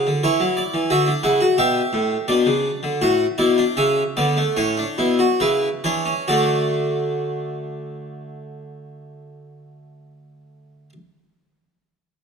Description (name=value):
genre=classical, baroque-style 3-part fugue for harpsichord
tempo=66-91 BPM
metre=4/4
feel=straight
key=D major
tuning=A4 = 437 Hz
part: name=harpsichord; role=solo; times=0.0-10.9 s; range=A2 to F#5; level=-18 LUFS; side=equal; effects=none
room=moderate recital hall reverb, RT60 1.7 s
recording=none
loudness=-17 LUFS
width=side -6 dB against mid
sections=0.0-6.3 A section; 6.3-9.9 B section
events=slowing down 0.0-6.3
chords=0.2 F#5/E; 1.6 G; 3.0 D/A; 6.3 D